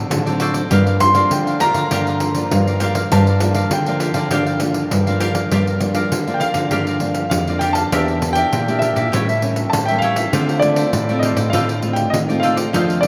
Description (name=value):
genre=samba and choro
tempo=100 BPM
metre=4/4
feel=straight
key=G minor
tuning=A4 = 440 Hz
part: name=nylon-string guitar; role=accompaniment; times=0.0-13.1 s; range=F2 to G4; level=-25 LUFS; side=equal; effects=none
part: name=nylon-string guitar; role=bass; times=0.1-13.1 s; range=E2 to F3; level=-22 LUFS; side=equal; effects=none
part: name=pandeiro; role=percussion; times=0.1-13.1 s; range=none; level=-25 LUFS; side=equal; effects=none
part: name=cavaquinho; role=accompaniment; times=0.3-13.1 s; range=Eb4 to F5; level=-27 LUFS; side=equal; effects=none
part: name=warm concert grand piano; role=melody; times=1.0-13.1 s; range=D5 to C6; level=-23 LUFS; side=equal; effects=none
room=wet cathedral reverb, RT60 6.2 s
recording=in a vast, echoing space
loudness=-17 LUFS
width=mono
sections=0.0-5.5 A section; 5.5-13.1 B section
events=grand piano solo 0.0-5.5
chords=0.0 D7b9; 0.7 Gm7; 7.9 Em7b5; 9.1 A7b9; 10.3 Dm7